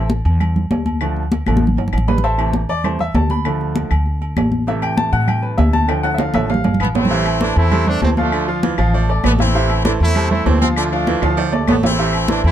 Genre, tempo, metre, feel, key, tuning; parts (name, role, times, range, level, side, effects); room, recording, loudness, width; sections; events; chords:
latin, salsa; 197 BPM; 4/4; straight; A minor; A4 = 440 Hz
bright baby grand piano; accompaniment; 0.0-12.5 s; C3 to B5; -21 LUFS; equal
upright bass; bass; 0.0-12.5 s; G1 to A2; -18 LUFS; equal
congas; percussion; 0.1-12.5 s; -20 LUFS; left 1 dB
timbales and agogo bells; percussion; 0.1-12.5 s; -24 LUFS; right 4 dB
claves; percussion; 0.4-12.3 s; -30 LUFS; left 10 dB
bright trumpet section; melody; 6.8-12.5 s; A3 to F4; -20 LUFS; right 1 dB
edgy baritone saxophone; second line; 7.1-12.4 s; C3 to A3; -25 LUFS; right 6 dB
light reverb; dark, warm production; -14 LUFS; side -11 dB against mid
0.0-7.1 A section; 7.1-12.5 B section
grand piano solo 0.0-7.1; drum fill 1.5-2.2, 5.9-7.1, 11.2-12.0
0.0 A5; 1.0 Dm; 2.2 Am; 3.4 Dm; 4.7 Am; 5.9 Dm; 7.1 Am; 8.3 Dm; 9.5 Am; 10.8 Dm; 12.0 Am